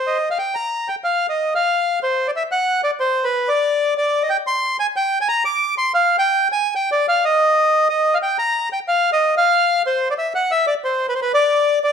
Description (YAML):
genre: tango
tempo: 184 BPM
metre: 3/4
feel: rubato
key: C minor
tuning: A4 = 439 Hz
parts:
  - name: bandoneon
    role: solo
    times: 0.0-11.9 s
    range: B4 to D6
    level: -16 LUFS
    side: equal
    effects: none
room: moderate large studio reverb, RT60 1.2 s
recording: minimal, uncompressed stereo recording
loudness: -16 LUFS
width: side -7 dB against mid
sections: 0.4-8.2 A section; 8.2-11.9 A section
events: none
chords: none